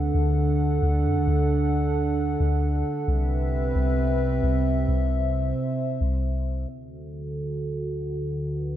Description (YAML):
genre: hip hop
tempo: 133 BPM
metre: 4/4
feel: half-time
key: D mixolydian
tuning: A4 = 438 Hz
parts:
  - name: dark analog pad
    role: sustained chords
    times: 0.0-8.8 s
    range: D2 to F#5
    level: -25 LUFS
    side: right 1 dB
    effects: chorus, low-pass filter
  - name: soft 808-style bass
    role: bass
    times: 0.0-6.7 s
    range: C2 to F#2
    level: -24 LUFS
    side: equal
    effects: none
room: light reverb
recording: none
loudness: -22 LUFS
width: side -11 dB against mid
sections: 0.0-6.7 A section; 6.7-8.8 B section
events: filter sweep on analog synth pad 6.7-8.8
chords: 0.0 D; 3.1 Cmaj7; 6.7 D